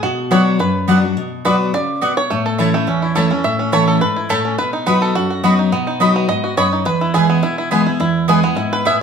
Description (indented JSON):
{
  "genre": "bluegrass",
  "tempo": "211 BPM",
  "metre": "4/4",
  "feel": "swing 53% on 8ths",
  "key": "unclear",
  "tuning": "A4 = 445 Hz",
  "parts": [
    { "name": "bluegrass banjo", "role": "melody", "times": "0.0-9.0 s", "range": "A3 to E5", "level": "-18 LUFS", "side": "right 2 dB", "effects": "none" },
    { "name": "picked steel-string acoustic guitar", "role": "accompaniment", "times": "0.0-9.0 s", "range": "E2 to F#4", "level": "-16 LUFS", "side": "left 1 dB", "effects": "none" },
    { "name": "mandolin", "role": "stabs", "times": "0.3-9.0 s", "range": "A3 to B5", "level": "-20 LUFS", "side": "right 2 dB", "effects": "none" }
  ],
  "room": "moderate large studio reverb, RT60 1.1 s",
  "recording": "band playing live in one room",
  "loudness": "-14 LUFS",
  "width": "side -6 dB against mid",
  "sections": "0.0-9.0 A section",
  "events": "five-string banjo solo 0.0-9.0",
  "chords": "0.0 Bm; 2.3 A; 4.6 B; 6.9 E"
}